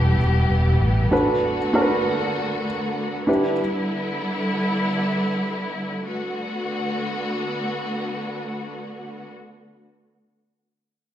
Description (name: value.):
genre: pop.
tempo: 97 BPM.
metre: 4/4.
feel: straight.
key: B minor.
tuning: A4 = 436 Hz.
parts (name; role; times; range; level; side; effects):
dark baby grand piano; accompaniment; 0.0-3.6 s; B2 to B4; -22 LUFS; right 1 dB; slapback echo.
warm studio string section; sustained chords; 0.0-9.3 s; D3 to G4; -25 LUFS; equal; none.
vintage muted picked electric bass; bass; 0.0-1.1 s; E1 to A1; -17 LUFS; equal; none.
room: wet club reverb, RT60 0.5 s.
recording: live gig heard through the venue's PA, recital hall reverb.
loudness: -21 LUFS.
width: side -11 dB against mid.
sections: 0.0-6.1 A section; 6.1-8.5 B section.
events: none.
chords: 0.0 Em; 1.1 Bm7; 3.3 G6; 6.1 Bm7.